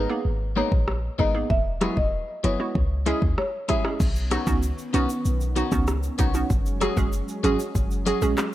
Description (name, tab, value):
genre	dancehall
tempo	96 BPM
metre	4/4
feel	straight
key	unclear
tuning	A4 = 440 Hz
part	buzzing marimba with medium mallets	melody	0.0-3.8 s	C#5 to E5	-30 LUFS	equal	tape echo
part	clean electric guitar	arpeggios	0.0-8.2 s	D#3 to A#4	-31 LUFS	left 5 dB	spring reverb
part	clean 808-style bass	bass	0.0-8.3 s	E1 to D#2	-26 LUFS	equal	none
part	hollow square pluck	accompaniment	0.1-8.3 s	G#3 to G#4	-27 LUFS	right 3 dB	chorus
part	afro-pop drum kit	drums	0.7-8.5 s	crash cymbal, handclaps, hi-hat, kick drum, rim click, shaker	-26 LUFS	equal	none
part	warm analog pad	sustained chords	4.0-8.5 s	D#3 to C#4	-33 LUFS	equal	chorus, sidechain pumping
part	egg shaker	percussion	4.0-8.5 s	none	-45 LUFS	left 10 dB	none
room	little or no reverb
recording	none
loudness	-21 LUFS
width	side -14 dB against mid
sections	0.0-4.0 A section; 4.0-8.5 B section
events	none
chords	0.0 G#madd9; 1.5 Eadd9; 2.8 C#m; 4.0 Badd9; 6.5 F#sus2